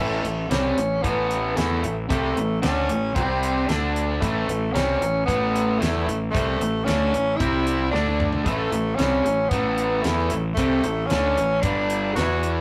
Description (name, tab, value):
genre	classic rock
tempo	113 BPM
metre	4/4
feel	straight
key	unclear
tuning	A4 = 441 Hz
part	raspy tenor saxophone	melody	0.0-12.5 s	A3 to F#4	-27 LUFS	equal	none
part	raw garage guitar	riff	0.0-12.6 s	G2 to E4	-27 LUFS	equal	overdrive
part	fuzz fingered electric bass	bass	0.0-12.6 s	G1 to E2	-29 LUFS	equal	overdrive
part	damped 70s drum kit	drums	0.2-12.6 s	hi-hat, kick drum, snare drum, toms	-30 LUFS	equal	none
room	moderate studio reverb, RT60 0.6 s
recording	rough rehearsal-room recording, tube saturation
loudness	-23 LUFS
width	mono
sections	0.0-12.6 A section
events	drum fill 7.9-8.5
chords	0.0 A; 3.2 C5; 3.7 D5; 4.2 A; 7.4 C5; 7.9 D5; 8.5 A; 11.6 G5